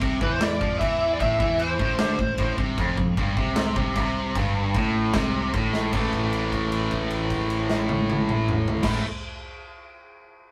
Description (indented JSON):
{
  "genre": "heavy metal",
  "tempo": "152 BPM",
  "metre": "4/4",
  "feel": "straight",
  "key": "A minor",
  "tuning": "A4 = 441 Hz",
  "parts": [
    { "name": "biting overdriven guitar", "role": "riff", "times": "0.0-9.0 s", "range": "F2 to A3", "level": "-33 LUFS", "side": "equal", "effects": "none" },
    { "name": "high-gain distorted guitar", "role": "riff", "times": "0.0-9.0 s", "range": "F2 to A3", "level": "-32 LUFS", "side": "equal", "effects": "distortion" },
    { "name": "modern bright picked electric bass", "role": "bass", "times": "0.0-9.0 s", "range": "F1 to F2", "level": "-32 LUFS", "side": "equal", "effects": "none" },
    { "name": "big rock drum kit", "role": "drums", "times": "0.0-8.9 s", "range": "crash cymbal, kick drum, snare drum, toms", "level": "-29 LUFS", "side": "equal", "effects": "none" },
    { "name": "bluesy overdriven lead guitar", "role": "melody", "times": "0.2-2.5 s", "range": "B4 to E5", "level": "-27 LUFS", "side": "equal", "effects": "distortion" },
    { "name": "tight distorted guitar", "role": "riff", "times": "2.8-9.0 s", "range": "F2 to A3", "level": "-31 LUFS", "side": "equal", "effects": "distortion" }
  ],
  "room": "moderate booth ambience, RT60 0.3 s",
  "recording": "rough rehearsal-room recording",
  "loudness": "-24 LUFS",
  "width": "mono",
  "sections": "0.0-5.9 A section; 5.9-9.1 B section",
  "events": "drum fill 5.7; held note 5.9-8.8",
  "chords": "0.0 Am; 2.8 F5; 5.9 A5"
}